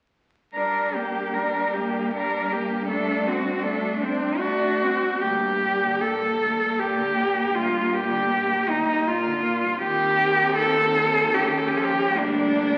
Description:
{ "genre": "classical, lyrical piece for cello ensemble", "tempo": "78 BPM", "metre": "3/4", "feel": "uneven beats, rubato", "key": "G minor", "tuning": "A4 = 440 Hz", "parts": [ { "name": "rich cello", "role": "melody", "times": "0.5-12.8 s", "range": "D4 to Bb4", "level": "-24 LUFS", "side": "equal", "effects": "none" }, { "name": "warm cello", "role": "second line", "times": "0.6-12.8 s", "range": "Bb3 to D4", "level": "-31 LUFS", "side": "equal", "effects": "none" }, { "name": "rich cello", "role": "accompaniment", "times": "0.6-12.8 s", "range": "D2 to C4", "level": "-34 LUFS", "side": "equal", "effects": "none" }, { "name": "warm cello", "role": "bass", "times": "0.6-12.8 s", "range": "D2 to G2", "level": "-37 LUFS", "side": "equal", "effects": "none" } ], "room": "wet recital hall reverb, RT60 1.6 s", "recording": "very old 78 rpm record, vinyl crackle", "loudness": "-23 LUFS", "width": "mono", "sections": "0.6-5.2 A section; 5.2-12.8 B section", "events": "none", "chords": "0.6 Gm; 2.9 D7/G; 5.2 Gm/D; 9.8 Cm/Eb; 11.3 Eb9; 12.2 Gm/D", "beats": "| 0.58 1.37 2.15 | 2.90 3.64 4.41 | 5.24 6.02 6.79 | 7.55 8.31 9.07 | 9.83 10.57 11.33 | 12.16" }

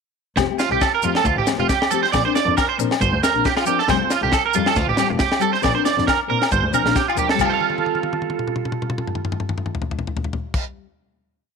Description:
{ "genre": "highlife guitar band", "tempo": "137 BPM", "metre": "4/4", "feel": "swing 55% on 16ths", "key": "F major", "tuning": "A4 = 440 Hz", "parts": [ { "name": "nylon-string guitar", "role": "accompaniment", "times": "0.4-11.0 s", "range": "F3 to Bb4", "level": "-26 LUFS", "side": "left 15 dB", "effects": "none" }, { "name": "electric guitar at the edge of break-up", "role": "arpeggios", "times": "0.4-10.7 s", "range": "F4 to F5", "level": "-20 LUFS", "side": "right 10 dB", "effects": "ensemble chorus, slapback echo" }, { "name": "clear double bass", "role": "bass", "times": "0.4-7.5 s", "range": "F1 to Bb2", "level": "-25 LUFS", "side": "left 1 dB", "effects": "none" }, { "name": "tight funk drum kit", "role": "drums", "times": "0.4-10.6 s", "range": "crash cymbal, kick drum, snare drum, toms", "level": "-24 LUFS", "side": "left 1 dB", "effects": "none" }, { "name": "agogo bells", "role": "percussion", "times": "0.4-10.6 s", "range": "none", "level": "-27 LUFS", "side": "left 16 dB", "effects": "none" }, { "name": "maracas", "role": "percussion", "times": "0.4-10.6 s", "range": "none", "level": "-33 LUFS", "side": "left 17 dB", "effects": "none" } ], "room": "light reverb, small room ambience", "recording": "1960s-style stereo with parts hard left and right", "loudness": "-17 LUFS", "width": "side -5 dB against mid", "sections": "0.4-7.4 groove; 7.4-10.9 final chord", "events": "drum fill 6.5-7.4, 7.6-10.5", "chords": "0.4 Fadd9; 2.1 Bbadd9; 3.9 Fadd9; 5.6 Bbadd9; 7.4 Fadd9", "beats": "| 0.37 0.81 1.25 1.69 | 2.13 2.57 3.01 3.45 | 3.89 4.33 4.77 5.21 | 5.64 6.08 6.52 6.96 | 7.40 7.84 8.28 8.71 | 9.15 9.59 10.03 10.47" }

